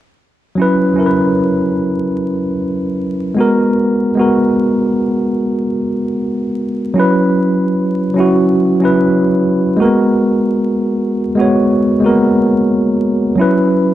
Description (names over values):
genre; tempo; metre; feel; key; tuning
hip hop; 75 BPM; 4/4; swing 62% on 16ths; unclear; A4 = 440 Hz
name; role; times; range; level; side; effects
tine electric piano; accompaniment; 0.6-13.9 s; F#3 to C#5; -12 LUFS; equal; fast stereo tremolo, low-pass filter
room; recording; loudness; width
moderate spring reverb, RT60 2.2 s; dark, warm production, vinyl crackle; -12 LUFS; side -13 dB against mid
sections
0.6-7.0 A section; 7.0-13.9 B section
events
none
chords
0.6 F#7sus4; 3.4 G#m9; 7.0 F#7sus4; 9.8 G#m9; 13.4 F#7sus4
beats
| 0.57 1.37 2.17 2.97 | 3.77 4.57 5.37 6.17 | 6.97 7.77 8.57 9.37 | 10.17 10.97 11.77 12.57 | 13.37